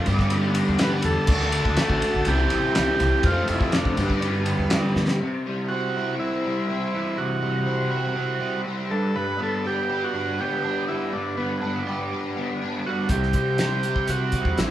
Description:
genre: psychedelic rock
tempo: 122 BPM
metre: 4/4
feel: straight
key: G mixolydian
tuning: A4 = 440 Hz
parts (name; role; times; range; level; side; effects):
- mellow tonewheel organ; sustained chords; 0.0-14.7 s; B4 to D6; -36 LUFS; right 3 dB; fast rotary speaker
- crunchy overdriven guitar; riff; 0.0-14.7 s; F2 to G4; -25 LUFS; equal; rotary speaker
- upright bass; bass; 0.1-5.1, 13.1-14.7 s; A1 to C3; -27 LUFS; equal; none
- cloth-damped thuddy drum kit; drums; 0.1-5.2, 13.1-14.7 s; crash cymbal, hi-hat, kick drum, ride cymbal, snare drum; -25 LUFS; equal; none
- combo organ; melody; 0.8-14.7 s; B3 to B4; -26 LUFS; right 2 dB; spring reverb
room: wet large studio reverb, RT60 1.2 s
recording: band playing live in one room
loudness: -21 LUFS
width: side -12 dB against mid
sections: 0.0-5.2 A section; 5.2-14.7 B section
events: drum fill 5.0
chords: 0.1 G; 1.3 D; 2.3 C6; 3.2 F; 4.0 G; 5.2 C; 8.9 G; 13.1 C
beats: 0.32 0.80 | 1.29 1.78 2.27 2.76 | 3.25 3.74 4.23 4.72 | 5.21 5.70 6.19 6.68 | 7.17 7.67 8.16 8.65 | 9.15 9.64 10.13 10.63 | 11.12 11.61 12.11 12.60 | 13.09 13.59 14.08 14.57

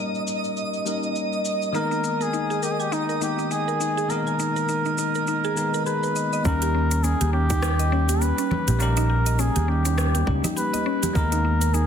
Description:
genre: organic downtempo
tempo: 102 BPM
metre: 4/4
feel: swing 58% on 16ths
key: unclear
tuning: A4 = 438 Hz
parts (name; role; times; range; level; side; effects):
- bell-like tine electric piano; accompaniment; 0.0-11.9 s; Eb3 to Cb5; -29 LUFS; left 3 dB; phaser, sidechain pumping, digital delay
- twinkling granular texture; texture; 0.0-6.5 s; Eb5; -31 LUFS; right 2 dB; built-in reverb
- organic electronic drum kit; drums; 0.1-11.9 s; cabasa, hi-hat, rim click; -33 LUFS; equal; low-pass filter on hats, low-pass filter on perc, low-pass filter on snare, low-pass filter on room
- mallet-like synth pluck; arpeggios; 1.7-11.9 s; Db4 to Ab5; -28 LUFS; equal; chorus, digital delay
- trumpet with cup mute; melody; 1.8-11.9 s; Eb4 to Cb5; -26 LUFS; equal; digital delay
- fretless electric bass; bass; 6.5-11.8 s; Bb1 to Eb2; -21 LUFS; right 1 dB; wide subtle chorus, sidechain pumping
- electronic kick drum; drums; 6.5-11.3 s; none; -27 LUFS; right 1 dB; none
- congas and bongos; percussion; 7.0-11.9 s; none; -32 LUFS; right 1 dB; none
room: moderate echo chamber reverb, RT60 1.6 s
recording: dense, heavily limited modern master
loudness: -21 LUFS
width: side -8 dB against mid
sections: 0.0-6.5 A section; 6.5-11.9 B section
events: none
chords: 0.0 Eb7; 1.7 Abmadd9/Eb; 6.5 Eb7; 11.2 Abmadd9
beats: 0.57 1.16 | 1.75 2.33 2.92 3.51 | 4.10 4.69 5.27 5.86 | 6.45 7.04 7.63 8.21 | 8.80 9.39 9.98 10.57 | 11.16 11.74

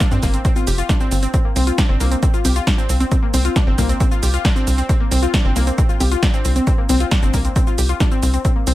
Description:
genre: uplifting trance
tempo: 135 BPM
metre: 4/4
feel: straight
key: unclear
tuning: A4 = 440 Hz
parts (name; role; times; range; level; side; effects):
- analog pluck; arpeggios; 0.0-8.7 s; Bb3 to G4; -22 LUFS; left 2 dB; chorus, sidechain pumping, tape echo
- electronic kick drum; drums; 0.0-8.5 s; none; -18 LUFS; equal; none
- punchy analog drum machine; drums; 0.0-8.7 s; congas, hi-hat, shaker, snare drum; -23 LUFS; equal; none
- tight sequencer bass; bass; 0.1-8.7 s; F1 to G2; -18 LUFS; equal; sidechain pumping
room: little or no reverb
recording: none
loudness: -14 LUFS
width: side -16 dB against mid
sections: 0.0-8.7 A section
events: none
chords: none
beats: 0.00 0.45 0.89 | 1.34 1.78 2.23 2.67 | 3.12 3.56 4.00 4.45 | 4.89 5.34 5.78 6.23 | 6.67 7.12 7.56 8.00 | 8.45

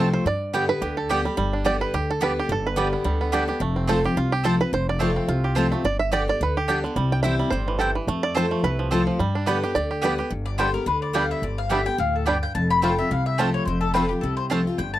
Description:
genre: bluegrass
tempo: 215 BPM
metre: 4/4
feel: swing 56% on 8ths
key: G mixolydian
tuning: A4 = 440 Hz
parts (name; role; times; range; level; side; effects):
- bluegrass banjo; melody; 0.0-14.6 s; D3 to G5; -25 LUFS; right 4 dB; none
- picked steel-string acoustic guitar; accompaniment; 0.0-15.0 s; F2 to G4; -26 LUFS; left 2 dB; none
- mandolin; stabs; 0.0-14.6 s; B3 to A5; -25 LUFS; right 3 dB; none
- upright bass; bass; 0.0-15.0 s; F1 to G2; -27 LUFS; equal; none
- mandolin; melody; 10.5-15.0 s; G4 to B5; -25 LUFS; left 4 dB; tape echo
room: little or no reverb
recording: dry, close 1970s-style studio recording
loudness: -20 LUFS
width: side -14 dB against mid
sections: 0.0-1.4 A section; 1.4-10.3 A section; 10.3-15.0 B section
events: five-string banjo solo 0.0-10.3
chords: 0.3 G; 3.6 F; 5.8 G; 7.0 C; 8.1 F; 9.2 G; 12.6 F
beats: | 0.26 0.54 0.82 1.10 | 1.38 1.66 1.94 2.22 | 2.50 2.77 3.05 3.33 | 3.61 3.89 4.17 4.45 | 4.73 5.01 5.29 5.57 | 5.85 6.12 6.40 6.68 | 6.96 7.24 7.52 7.80 | 8.08 8.36 8.64 8.92 | 9.20 9.47 9.75 10.03 | 10.31 10.59 10.87 11.15 | 11.43 11.71 11.99 12.27 | 12.55 12.83 13.11 13.39 | 13.67 13.95 14.23 14.51 | 14.79

